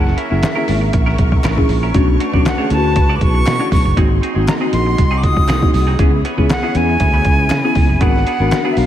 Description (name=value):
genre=polished 1980s jazz-funk pop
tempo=119 BPM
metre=4/4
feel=swing 54% on 16ths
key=unclear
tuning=A4 = 441 Hz
part: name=breathy bright jazz flute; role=melody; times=0.0-8.9 s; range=E5 to D#6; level=-21 LUFS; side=equal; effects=slapback echo
part: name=bell-like FM electric piano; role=accompaniment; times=0.0-8.9 s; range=G#3 to A#4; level=-19 LUFS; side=left 2 dB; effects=lush chorus, slapback echo
part: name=rich studio string section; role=sustained chords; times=0.0-8.9 s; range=G#4 to C#6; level=-27 LUFS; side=left 1 dB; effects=none
part: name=clean electric guitar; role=riff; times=0.0-8.8 s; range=E3 to D5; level=-26 LUFS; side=right 3 dB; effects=wide subtle chorus, slapback echo
part: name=sustaining fretless electric bass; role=bass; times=0.0-8.9 s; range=F#1 to C#3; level=-17 LUFS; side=equal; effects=analog chorus
part: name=trip hop sampler-style drum kit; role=drums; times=0.1-8.9 s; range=hi-hat, kick drum, snare drum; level=-16 LUFS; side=equal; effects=none
part: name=group handclap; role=percussion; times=0.4-8.6 s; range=none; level=-36 LUFS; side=left 5 dB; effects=none
room=light reverb, small room ambience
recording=none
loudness=-12 LUFS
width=side -11 dB against mid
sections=0.0-8.9 A section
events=none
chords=0.0 F#7; 1.9 Bm9; 4.0 G#7; 6.0 C#m7; 8.0 G#m7b5